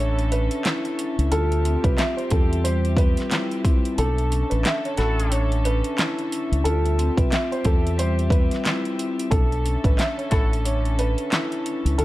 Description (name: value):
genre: hip hop, boom-bap hip-hop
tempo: 90 BPM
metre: 4/4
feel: swing 60% on 16ths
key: unclear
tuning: A4 = 440 Hz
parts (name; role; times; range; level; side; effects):
- dark upright piano; melody; 0.0-12.0 s; A4 to E5; -28 LUFS; right 1 dB; high-pass filter, low-pass filter, analog delay
- vibraphone with medium hard mallets; accompaniment; 0.0-12.0 s; G3 to F4; -27 LUFS; left 1 dB; cassette tape, high-pass filter, low-pass filter
- warm studio string section; sustained chords; 0.0-12.0 s; D3 to E5; -34 LUFS; left 1 dB; high-pass filter, low-pass filter
- deep dub fingered electric bass; bass; 0.0-12.0 s; A1 to E2; -22 LUFS; equal; none
- pop drum kit; drums; 0.2-12.0 s; handclaps, hi-hat, kick drum, snare drum; -23 LUFS; equal; none
- warm horn section; stabs; 5.0-5.4, 10.3-10.5 s; E4 to A4; -34 LUFS; equal; high-pass filter, low-pass filter, analog delay
room: studio reverb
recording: none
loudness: -20 LUFS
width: side -16 dB against mid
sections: 0.0-12.0 A section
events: kick muted 4.0-5.3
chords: 0.0 Bm11; 1.3 Dm11; 4.0 Bm11; 6.6 Dm11; 9.3 Bm11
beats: 0.65 | 1.31 1.98 2.65 3.31 | 3.98 4.65 5.31 5.98 | 6.65 7.31 7.98 8.65 | 9.31 9.98 10.65 11.31 | 11.98